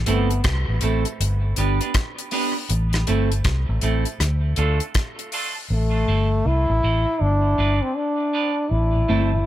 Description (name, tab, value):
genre	dub reggae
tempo	80 BPM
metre	4/4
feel	swing 63% on 16ths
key	A minor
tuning	A4 = 439 Hz
part	vintage muted fingered electric bass	bass	0.0-9.4 s	G1 to D2	-20 LUFS	equal	none
part	breathy trombone	melody	0.1-0.4, 5.7-9.5 s	A3 to E4	-23 LUFS	left 1 dB	dub echo
part	clean electric guitar	accompaniment	0.1-9.3 s	A3 to B4	-27 LUFS	right 4 dB	high-pass filter, dub echo
part	damped 70s drum kit	drums	0.1-5.5 s	hi-hat, kick drum, rim click	-25 LUFS	left 1 dB	none
part	mellow tonewheel organ	accompaniment	6.0-9.4 s	G2 to E4	-29 LUFS	left 3 dB	none
room	studio reverb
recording	none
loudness	-19 LUFS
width	side -13 dB against mid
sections	0.0-5.7 A section; 5.7-9.5 B section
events	break 0.0-5.7; filter sweep 2.7-8.7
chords	0.0 Am; 1.2 G; 2.7 Am; 4.2 Dm; 5.7 Am; 7.2 G; 8.7 Am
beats	0.44 1.20 1.95 | 2.70 3.45 4.20 4.95 | 5.70 6.45 7.21 7.96 | 8.71 9.46